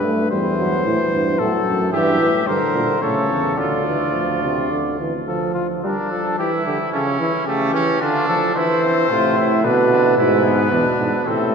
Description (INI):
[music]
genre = classical, imitative canzona for brass ensemble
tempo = 110 BPM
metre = 3/4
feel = straight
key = D minor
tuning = A4 = 441 Hz
[part]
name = clear cornet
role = melody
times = 0.0-11.5 s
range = E4 to E5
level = -22 LUFS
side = left 5 dB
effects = none
[part]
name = warm euphonium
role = accompaniment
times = 0.0-11.5 s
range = B2 to A3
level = -22 LUFS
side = right 1 dB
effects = none
[part]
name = mellow bass trombone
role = bass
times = 0.0-5.0, 9.1-11.5 s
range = D2 to B2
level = -21 LUFS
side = right 1 dB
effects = none
[part]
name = clear trumpet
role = second line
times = 1.9-11.5 s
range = A3 to Bb4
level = -23 LUFS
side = right 3 dB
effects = none
[sound]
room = wet cathedral reverb, RT60 5.3 s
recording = recorded in a church or concert hall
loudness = -16 LUFS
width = side -6 dB against mid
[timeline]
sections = 0.0-5.3 A section; 5.3-11.5 B section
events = none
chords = 0.3 C/E; 1.4 F#m; 1.9 Edim/G; 3.0 A; 3.6 Dm; 5.3 Dm/F; 6.4 Dsus24; 6.9 A/C#; 8.0 Dm; 8.6 Am/E; 9.6 Bm; 10.2 E/G#